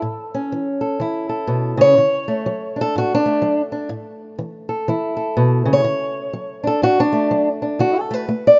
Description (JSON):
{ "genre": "acoustic country blues, solo or duo", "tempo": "124 BPM", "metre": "4/4", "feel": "swing 60% on 8ths", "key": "unclear", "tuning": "A4 = 440 Hz", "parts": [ { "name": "fingerpicked old ladder-braced acoustic guitar", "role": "solo", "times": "0.0-8.6 s", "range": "A2 to D5", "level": "-19 LUFS", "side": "equal", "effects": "none" } ], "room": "light reverb, studio ambience", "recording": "rough home demo mix, nothing above 7.5 kHz", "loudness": "-19 LUFS", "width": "mono", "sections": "0.0-8.6 A section", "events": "steel-string acoustic guitar solo 0.0-8.6", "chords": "0.0 A; 2.0 D; 3.9 A; 5.9 D" }